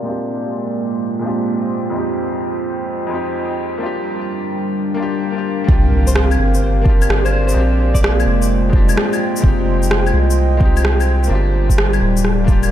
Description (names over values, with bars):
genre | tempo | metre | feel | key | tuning
future garage | 128 BPM | 4/4 | swing 66% on 16ths | unclear | A4 = 440 Hz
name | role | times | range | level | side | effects
bright upright piano | accompaniment | 0.0-12.7 s | F2 to G4 | -25 LUFS | left 2 dB | sidechain pumping, ping-pong delay
dark analog pad | sustained chords | 0.0-12.7 s | G3 to G5 | -20 LUFS | equal | chorus, sidechain pumping
soft dub sub bass | bass | 5.7-12.7 s | D1 to C2 | -16 LUFS | equal | sidechain pumping
electronic kick drum | drums | 5.7-12.6 s | none | -14 LUFS | equal | none
impact | sound effects | 5.7-7.6 s | none | -24 LUFS | equal | none
raspy alto saxophone | melody | 6.1-8.1 s | C5 to D5 | -29 LUFS | left 1 dB | tape echo
electronic shaker, rim click and claves | drums | 6.1-12.7 s | none | -22 LUFS | equal | overdrive
room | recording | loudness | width
moderate cathedral reverb, RT60 6.0 s | dreamy mix soaked in reverb, low-pass filter | -14 LUFS | side -11 dB against mid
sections
0.0-5.7 A section; 5.7-12.7 B section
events
filter sweep 0.0-5.7; impact 5.7-7.6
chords
0.1 Bb13; 1.9 Fm7; 3.8 Gm7; 7.6 Bb13; 9.4 Fm7; 11.3 Gm7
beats
| 0.06 0.53 1.00 1.47 | 1.94 2.41 2.88 3.34 | 3.81 4.28 4.75 5.22 | 5.69 6.16 6.62 7.09 | 7.56 8.03 8.50 8.97 | 9.44 9.91 10.38 10.84 | 11.31 11.78 12.25